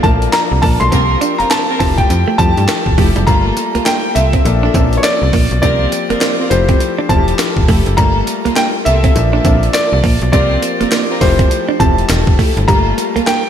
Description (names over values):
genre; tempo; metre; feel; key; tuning
R&B, new jack swing; 102 BPM; 4/4; swing 61% on 16ths; G dorian; A4 = 440 Hz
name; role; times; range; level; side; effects
warm grand piano; melody; 0.0-13.5 s; C5 to C6; -17 LUFS; right 1 dB; slapback echo, tape echo
warm grand piano; accompaniment; 0.0-13.5 s; F3 to Bb4; -20 LUFS; left 8 dB; none
direct-recorded clean electric guitar; riff; 0.0-13.4 s; G3 to D4; -21 LUFS; right 6 dB; lush chorus
warm studio string section; stabs; 0.0-13.3 s; Bb3 to Bb4; -23 LUFS; right 1 dB; slapback echo, tape echo
slap-like FM bass; bass; 0.0-13.2 s; E1 to G2; -15 LUFS; equal; none
breakbeat sampler-style drum kit; drums; 0.0-13.4 s; handclaps, hi-hat, kick drum, snare drum, tambourine; -16 LUFS; equal; none
room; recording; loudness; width
moderate lush hall reverb, RT60 2.7 s; big arena sound; -11 LUFS; side -9 dB against mid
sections
0.0-3.3 A section; 3.3-13.5 B section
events
none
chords
0.0 Bbmaj7; 0.9 C7sus4; 1.8 Fmaj9; 3.3 Gm9; 4.5 Bbmaj7; 5.6 C7sus4; 6.5 Fmaj9; 8.0 Gm9; 9.2 Bbmaj7; 10.3 C7sus4; 11.2 Fmaj9; 12.7 Gm9